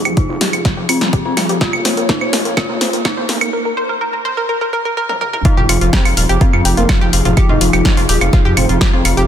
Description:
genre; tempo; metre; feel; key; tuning
melodic techno; 125 BPM; 4/4; straight; F minor; A4 = 439 Hz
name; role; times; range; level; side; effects
expressive synth lead; melody; 0.0-9.3 s; F3 to F4; -22 LUFS; equal; wide subtle chorus, sidechain pumping, tape echo
dark analog pad; sustained chords; 0.0-9.3 s; F3 to Db5; -24 LUFS; left 2 dB; chorus, sidechain pumping
analog pluck; arpeggios; 0.0-9.3 s; F4 to G5; -20 LUFS; right 1 dB; chorus, sidechain pumping, dub echo
gritty driven synth bass; bass; 0.1-9.3 s; Eb1 to F2; -18 LUFS; equal; sidechain pumping, high-pass filter
punchy analog drum machine; drums; 0.1-9.3 s; claves, hi-hat, snare drum, toms; -18 LUFS; equal; sidechain pumping on hats, sidechain pumping on perc, sidechain pumping on toms
dark detuned synth bell; second line; 0.2-9.0 s; C4 to F4; -25 LUFS; left 1 dB; chorus, sidechain pumping, low-pass filter, dub echo
electronic kick drum; drums; 0.2-8.9 s; none; -14 LUFS; equal; none
room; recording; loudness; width
light reverb, digital ambience; dense, heavily limited modern master, high-pass filter; -12 LUFS; side -9 dB against mid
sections
0.0-5.5 A section; 5.5-9.3 B section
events
build-up 0.0-5.5; drum fill 0.0-3.5, 5.1-5.5; filter sweep on synth arpeggio sound 0.0-5.5; filter sweep on analog synth lead 0.0-5.5; filter sweep on synth bell 0.0-5.5; break 3.5-5.5; drop 5.5-9.3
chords
0.0 Fm; 1.6 Bbm; 3.5 Bbsus2; 5.5 Fm7

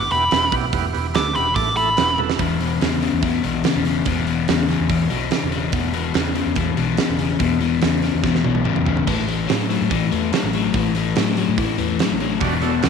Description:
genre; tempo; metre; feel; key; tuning
blues rock power trio and southern rock; 144 BPM; 4/4; straight; E minor; A4 = 440 Hz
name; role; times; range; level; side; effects
nasal lead guitar with a parked wah; melody; 0.0-2.2 s; B5 to D6; -20 LUFS; left 1 dB; overdrive, tape echo
overdriven tonewheel organ; sustained chords; 0.0-2.3, 12.4-12.9 s; A3 to A4; -26 LUFS; right 10 dB; slow rotary speaker
vintage muted fingered electric bass; bass; 0.0-12.9 s; E1 to A2; -26 LUFS; right 1 dB; none
big rock drum kit; drums; 0.1-12.9 s; hi-hat, kick drum, snare drum, splash cymbal, toms; -23 LUFS; right 7 dB; none
crunchy overdriven guitar; riff; 2.4-12.9 s; E2 to F#3; -20 LUFS; left 9 dB; spring reverb
room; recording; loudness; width
moderate echo chamber reverb, RT60 2.0 s; 1960s-style stereo with parts hard left and right; -17 LUFS; side -6 dB against mid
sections
0.0-2.4 A section; 2.4-12.9 B section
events
lead electric guitar solo 0.0-2.4; drum fill 2.2, 8.2-9.1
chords
0.0 Em; 1.6 A5; 2.0 Em; 2.4 E5; 9.1 A5

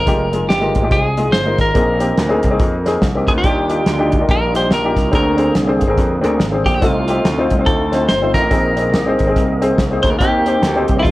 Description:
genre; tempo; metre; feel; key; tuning
uptempo gospel; 142 BPM; 4/4; swing 62% on 8ths; Eb major; A4 = 443 Hz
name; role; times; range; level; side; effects
clean electric guitar; melody; 0.0-11.1 s; Fb4 to C5; -19 LUFS; equal; none
gritty slap bass; bass; 0.0-11.1 s; F1 to F2; -20 LUFS; equal; overdrive, transformer saturation
warm upright piano; accompaniment; 0.1-11.1 s; G2 to C5; -18 LUFS; left 1 dB; none
warm soul drum kit; drums; 0.1-11.1 s; hi-hat, kick drum, snare drum; -18 LUFS; equal; none
percussive tonewheel organ; sustained chords; 3.4-11.1 s; D3 to Ab4; -23 LUFS; right 2 dB; slow rotary speaker, overdrive, chorus vibrato
room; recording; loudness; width
light reverb, studio reverb; worn, warbling old tape, cassette tape, warbly pitch drift; -13 LUFS; side -18 dB against mid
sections
0.0-11.1 A section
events
none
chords
0.1 Fm9; 1.8 Bb9sus4; 3.4 Ebmaj9; 5.1 Bb9; 6.8 F7/C; 8.5 Bb9sus4; 10.2 Eb6

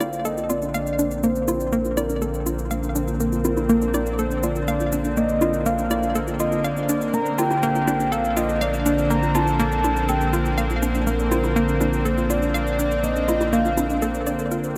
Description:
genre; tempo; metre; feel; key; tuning
ambient, sequencer-driven space music; 122 BPM; 4/4; straight; Bb major; A4 = 436 Hz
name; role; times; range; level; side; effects
soft octave-layered synth lead; melody; 0.0-14.0 s; Bb4 to Bb5; -28 LUFS; equal; chorus, tape echo
lush unison pad; sustained chords; 0.0-14.8 s; D3 to C4; -28 LUFS; equal; chorus
soft round pluck; arpeggios; 0.0-14.7 s; Bb3 to D5; -32 LUFS; equal; none
hollow square pluck; riff; 0.0-14.6 s; Bb3 to F5; -29 LUFS; equal; chorus, tape echo
round analog bass; bass; 0.0-14.8 s; Bb1; -31 LUFS; equal; none
bongos and shaker; percussion; 0.0-14.7 s; none; -33 LUFS; equal; overdrive, tape echo
room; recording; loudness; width
wet lush hall reverb, RT60 2.7 s; none; -22 LUFS; mono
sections
0.0-14.8 A section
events
none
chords
0.0 Bbadd9

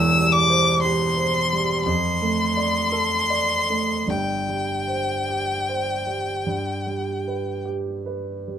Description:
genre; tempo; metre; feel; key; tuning
classical, romantic duo for violin and grand piano; 50-62 BPM; 4/4; rubato; C major; A4 = 440 Hz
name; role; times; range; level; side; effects
rich violin; melody; 0.0-7.6 s; G5 to E6; -22 LUFS; left 2 dB; none
warm grand piano; accompaniment; 0.0-8.6 s; E1 to D5; -23 LUFS; right 2 dB; none
room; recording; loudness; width
light reverb; minimal, uncompressed stereo recording; -20 LUFS; side -9 dB against mid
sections
0.0-8.6 A section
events
none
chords
0.0 C/E; 1.9 Dm7/F; 4.1 C5/G; 6.5 G

